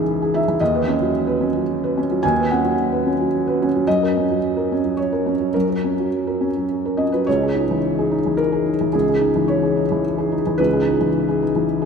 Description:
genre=neoclassical minimalist piano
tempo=109 BPM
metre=3/4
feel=rubato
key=C# dorian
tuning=A4 = 440 Hz
part: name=felt-muted upright piano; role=solo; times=0.0-11.9 s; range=C#2 to G#5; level=-17 LUFS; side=equal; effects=none
room=wet cathedral reverb, RT60 4.6 s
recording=recorded in a church or concert hall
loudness=-17 LUFS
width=side -6 dB against mid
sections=0.0-7.3 A section; 7.3-11.9 A section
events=none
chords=0.0 C#madd9; 0.6 Badd9/D#; 3.9 F#6; 7.3 C#madd9

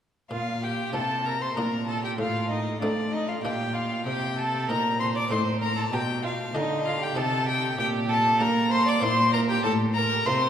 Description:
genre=classical, baroque-style sonata movement with continuo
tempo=96 BPM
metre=3/4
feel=straight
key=Bb major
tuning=A4 = 438 Hz
part: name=warm violin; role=melody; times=0.3-10.5 s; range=D5 to D6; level=-27 LUFS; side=left 3 dB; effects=none
part: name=warm violin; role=second line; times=0.3-10.5 s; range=D4 to D5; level=-30 LUFS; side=right 4 dB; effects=none
part: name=buff-stop harpsichord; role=accompaniment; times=0.3-10.5 s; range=A2 to G4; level=-34 LUFS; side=left 1 dB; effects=none
part: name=dark cello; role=bass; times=0.3-10.5 s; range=A2 to Bb3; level=-28 LUFS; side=right 1 dB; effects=none
room=wet church reverb, RT60 3.6 s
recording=recorded in a church or concert hall, lossy compression artefacts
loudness=-23 LUFS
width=side -9 dB against mid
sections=0.3-10.5 A section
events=none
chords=0.3 Bb; 2.2 F7/A; 3.4 Bb; 4.1 Cm; 5.9 G7b13/B; 7.2 Cm; 7.8 Gm/Bb; 9.0 C7/Bb; 9.6 F/A

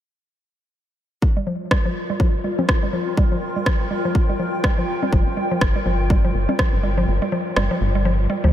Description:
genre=minimal techno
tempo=123 BPM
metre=4/4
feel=swing 59% on 16ths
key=G minor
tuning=A4 = 442 Hz
part: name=electronic kick drum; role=drums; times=1.2-6.7 s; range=none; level=-19 LUFS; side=equal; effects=overdrive
part: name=granular cloud pad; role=texture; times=1.9-8.5 s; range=F4 to G5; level=-28 LUFS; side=left 1 dB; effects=built-in reverb, sidechain pumping
part: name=mallet-like synth pluck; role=riff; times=1.4-8.5 s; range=F3 to G3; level=-24 LUFS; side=equal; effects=chorus, sidechain pumping, ping-pong delay
part: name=electronic rim click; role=drums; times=1.7-7.7 s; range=none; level=-27 LUFS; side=right 1 dB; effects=overdrive
part: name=congas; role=percussion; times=2.6-6.6 s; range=none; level=-31 LUFS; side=left 6 dB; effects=diffuse ambient delay
part: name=rubbery square bass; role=bass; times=5.1-8.5 s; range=G1 to D2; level=-20 LUFS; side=equal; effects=sidechain pumping
room=moderate cathedral reverb, RT60 6.3 s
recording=dreamy mix soaked in reverb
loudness=-18 LUFS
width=side -11 dB against mid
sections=1.2-8.5 A section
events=filter sweep on synth arpeggio sound 1.2-8.5; kick drops out 7.1-8.5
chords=1.2 Gm7

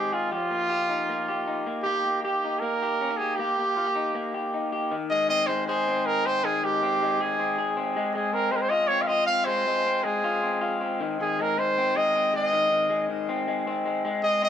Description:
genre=indie pop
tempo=158 BPM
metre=4/4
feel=straight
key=Ab major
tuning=A4 = 439 Hz
part: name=clear trumpet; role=melody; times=0.0-14.5 s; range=F4 to F5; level=-25 LUFS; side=right 1 dB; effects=analog delay
part: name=electric guitar through a small old amp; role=arpeggios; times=0.0-14.5 s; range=Eb3 to Ab4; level=-28 LUFS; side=left 2 dB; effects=analog delay
room=light reverb, small room ambience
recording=echo-heavy mix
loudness=-23 LUFS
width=side -9 dB against mid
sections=0.0-4.9 A section; 4.9-14.5 B section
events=none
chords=0.3 Ebadd9; 1.7 Eb/Bb; 3.4 Eb; 4.9 Ab; 8.0 Ab6; 11.0 Ab

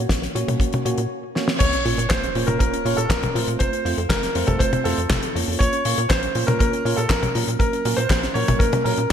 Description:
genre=italo disco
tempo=120 BPM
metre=4/4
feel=straight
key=Bb harmonic minor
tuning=A4 = 441 Hz
part: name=soft round pluck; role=arpeggios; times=0.0-9.1 s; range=A3 to Bb4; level=-32 LUFS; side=left 4 dB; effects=chorus, ping-pong delay
part: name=tight sequencer bass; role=bass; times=0.0-9.1 s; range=F1 to Bb2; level=-26 LUFS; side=equal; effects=none
part: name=damped 70s drum kit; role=drums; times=0.1-9.1 s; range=crash cymbal, handclaps, hi-hat, snare drum, toms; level=-24 LUFS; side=left 2 dB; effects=studio reverb, gated reverb
part: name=kick drum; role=drums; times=0.1-8.7 s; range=none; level=-21 LUFS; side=equal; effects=studio reverb
part: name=bell-like tine electric piano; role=stabs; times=0.4-9.0 s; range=Gb3 to Db5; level=-27 LUFS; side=right 4 dB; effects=wide subtle chorus
part: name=bright grand piano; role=melody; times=1.6-9.1 s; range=A4 to Db5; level=-24 LUFS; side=equal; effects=ping-pong delay
part: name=sub drop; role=sound effects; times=1.7-3.6 s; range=none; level=-32 LUFS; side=equal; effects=none
room=moderate lush hall reverb, RT60 1.6 s, studio reverb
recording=bright 1980s-style digital production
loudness=-18 LUFS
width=side -8 dB against mid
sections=0.0-1.6 A section; 1.6-9.1 B section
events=break 1.1-1.6; drum fill 1.4; band accent 1.5; impact 1.6-3.6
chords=0.0 Gb/Bb; 1.6 Bbm; 3.6 F; 5.6 Bbm; 7.6 Gb/Bb

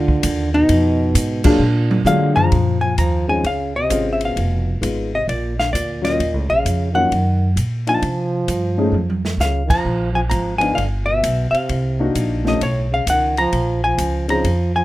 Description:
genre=jazz, small-group swing and bop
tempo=131 BPM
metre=4/4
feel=swing 66% on 8ths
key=Bb minor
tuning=A4 = 440 Hz
part: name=hollow-body jazz guitar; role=melody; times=0.0-14.8 s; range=D4 to Bb5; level=-20 LUFS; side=left 1 dB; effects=none
part: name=breathy trombone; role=second line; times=0.0-14.8 s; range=A2 to F3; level=-24 LUFS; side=right 3 dB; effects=none
part: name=upright bass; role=bass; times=0.0-14.8 s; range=F1 to D3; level=-20 LUFS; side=equal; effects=none
part: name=open jazz drum kit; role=drums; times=0.1-14.6 s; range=crash cymbal, hi-hat, kick drum, ride cymbal, snare drum, toms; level=-23 LUFS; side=equal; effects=none
part: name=warm baby grand piano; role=accompaniment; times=1.4-14.4 s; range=Gb3 to Ab4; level=-21 LUFS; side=left 2 dB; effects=none
room=light reverb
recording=none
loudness=-16 LUFS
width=side -16 dB against mid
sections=0.0-2.5 A section; 2.5-14.8 B section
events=band accent 1.4; drum fill 1.6-2.5, 8.9-9.4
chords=0.0 Ab5 (rootless); 0.7 Fm7b5; 1.6 Bb7b13; 2.5 Bbm11; 4.4 Fm7b5; 5.3 Bb; 6.2 Ebm9; 8.0 Cmadd11; 8.9 Db; 9.9 Bb5; 10.8 G; 11.7 Cm7b5; 12.6 Bsus2; 13.5 Bbm7

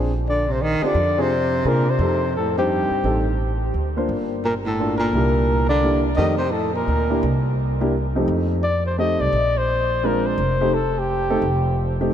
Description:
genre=jazz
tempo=172 BPM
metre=3/4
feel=swing 64% on 8ths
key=F mixolydian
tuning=A4 = 440 Hz
part: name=warm baby grand piano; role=accompaniment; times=0.0-12.1 s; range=F2 to C5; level=-24 LUFS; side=equal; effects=none
part: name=upright bass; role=bass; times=0.0-12.1 s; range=F1 to C3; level=-23 LUFS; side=equal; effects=none
part: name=breathy flugelhorn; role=melody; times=0.3-12.0 s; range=G4 to Eb5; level=-23 LUFS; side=left 2 dB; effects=ping-pong delay
part: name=breathy baritone saxophone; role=second line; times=0.3-7.4 s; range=G2 to Eb3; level=-25 LUFS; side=right 3 dB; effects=none
room=moderate huge ambient reverb, RT60 6.2 s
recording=dreamy mix soaked in reverb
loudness=-18 LUFS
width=side -9 dB against mid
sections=0.0-8.3 A section; 8.3-12.1 A section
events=none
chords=0.0 Bb9; 2.0 F9; 3.0 Am7b5; 3.7 Bbadd9/D; 4.1 Gm7; 5.1 C9; 6.2 F9; 6.9 Gm6/D; 7.2 C7(no3); 8.3 F9; 9.3 Bb9; 10.4 F9

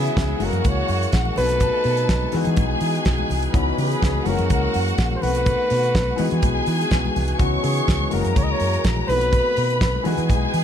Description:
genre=disco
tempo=124 BPM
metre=4/4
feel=straight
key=unclear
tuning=A4 = 440 Hz
part: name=mellow flugelhorn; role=melody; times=0.0-10.5 s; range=G#4 to D#5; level=-25 LUFS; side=equal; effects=tape echo
part: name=warm studio string section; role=second line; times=0.0-10.6 s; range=E4 to C#6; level=-26 LUFS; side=equal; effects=none
part: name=warm concert grand piano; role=accompaniment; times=0.0-10.6 s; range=D#3 to F#4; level=-28 LUFS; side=left 10 dB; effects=none
part: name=mellow French horn section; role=sustained chords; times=0.0-10.6 s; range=B2 to F#4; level=-32 LUFS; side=right 2 dB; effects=none
part: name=vintage muted fingered electric bass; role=bass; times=0.0-10.6 s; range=F#1 to E3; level=-23 LUFS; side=right 1 dB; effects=none
part: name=damped 70s drum kit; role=drums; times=0.1-10.6 s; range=hi-hat, kick drum, snare drum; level=-23 LUFS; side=right 1 dB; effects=none
part: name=congas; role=percussion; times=0.2-10.4 s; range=none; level=-32 LUFS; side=left 6 dB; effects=none
room=little or no reverb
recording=none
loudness=-18 LUFS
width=side -9 dB against mid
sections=0.0-10.6 A section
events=none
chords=0.4 F#9; 1.4 B7b9; 2.3 Emaj9; 3.5 C#m11; 4.3 F#9; 5.2 B7b9; 6.2 Emaj9; 7.4 C#m11; 8.1 F#9; 9.1 B7b9; 10.0 Emaj9

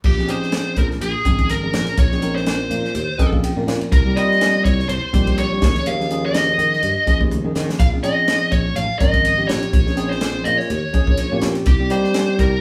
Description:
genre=electric jazz fusion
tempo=124 BPM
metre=4/4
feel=swing 55% on 16ths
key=Bb dorian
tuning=A4 = 437 Hz
part: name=sustaining fretless electric bass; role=bass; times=0.0-12.6 s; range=Ab1 to Eb3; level=-26 LUFS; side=equal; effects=none
part: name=tight funk drum kit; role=drums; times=0.0-12.5 s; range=crash cymbal, hi-hat, kick drum, ride cymbal, snare drum, toms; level=-21 LUFS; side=equal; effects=none
part: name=smooth overdriven lead guitar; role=melody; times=0.1-12.6 s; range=G4 to F5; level=-23 LUFS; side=equal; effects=none
part: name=tine electric piano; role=accompaniment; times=0.2-12.5 s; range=F3 to Ab5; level=-25 LUFS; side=equal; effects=none
room=moderate studio reverb, RT60 0.6 s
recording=band playing live in one room, small room ambience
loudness=-18 LUFS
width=mono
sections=0.0-12.6 A section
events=tine electric piano fill 3.0-3.9; drum fill 7.3-7.8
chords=0.0 Bbm11; 3.9 Cm7; 5.6 Eb9sus4; 7.8 Bbm11; 11.7 Cm7

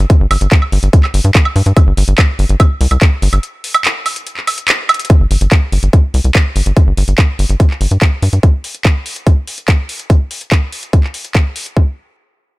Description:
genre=psychedelic trance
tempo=144 BPM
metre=4/4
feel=straight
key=unclear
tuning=A4 = 440 Hz
part: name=tight sequencer bass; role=bass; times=0.0-8.4 s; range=G1 to G2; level=-11 LUFS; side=equal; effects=none
part: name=drum and bass drum kit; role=drums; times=0.1-11.7 s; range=handclaps, hi-hat, woodblock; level=-17 LUFS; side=right 1 dB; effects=none
part: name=electronic kick drum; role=drums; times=0.1-11.8 s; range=none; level=-9 LUFS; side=equal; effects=none
room=little or no reverb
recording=none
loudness=-10 LUFS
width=side -20 dB against mid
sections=0.0-5.1 A section; 5.1-11.8 B section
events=drop 0.0-5.1; break 3.4-5.1; drum fill 4.9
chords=none

